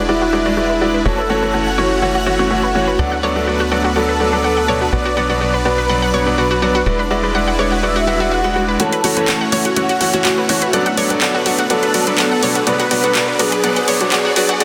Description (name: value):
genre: progressive house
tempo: 124 BPM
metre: 4/4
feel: straight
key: F# minor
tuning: A4 = 440 Hz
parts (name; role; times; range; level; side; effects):
- supersaw pad; sustained chords; 0.0-14.6 s; F#3 to D5; -24 LUFS; equal; none
- tight sequencer bass; bass; 0.0-14.6 s; E1 to D2; -26 LUFS; equal; high-pass filter
- twinkling granular texture; texture; 0.0-14.6 s; F#5 to F#6; -32 LUFS; equal; none
- expressive synth lead; melody; 0.1-14.6 s; E4 to F#5; -22 LUFS; equal; ensemble chorus, digital delay
- analog pluck; arpeggios; 0.1-14.6 s; F#4 to F#5; -24 LUFS; equal; chorus, digital delay
- bright concert grand piano; stabs; 0.1-14.6 s; B2 to F#5; -21 LUFS; equal; low-pass filter, digital delay
- swell and riser; sound effects; 8.1-14.6 s; none; -30 LUFS; equal; none
- big-room dance drum kit; drums; 8.8-14.6 s; handclaps, hi-hat; -21 LUFS; equal; none
room: moderate lush hall reverb, RT60 2.7 s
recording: dense, heavily limited modern master, high-pass filter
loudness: -16 LUFS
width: mono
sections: 0.0-8.8 A section; 8.8-14.6 B section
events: filter sweep on synth pluck 0.0-8.8; swell 8.1-8.8; build-up 8.8-14.6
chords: 0.0 E7; 1.1 F#m7; 3.0 D6; 4.9 Bm; 6.9 E7; 8.8 F#m7; 10.7 D6; 12.7 Bm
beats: 0.09 0.57 | 1.06 1.54 2.02 2.51 | 2.99 3.48 3.96 4.44 | 4.93 5.41 5.89 6.38 | 6.86 7.35 7.83 8.31 | 8.80 9.28 9.77 10.25 | 10.73 11.22 11.70 12.19 | 12.67 13.15 13.64 14.12 | 14.60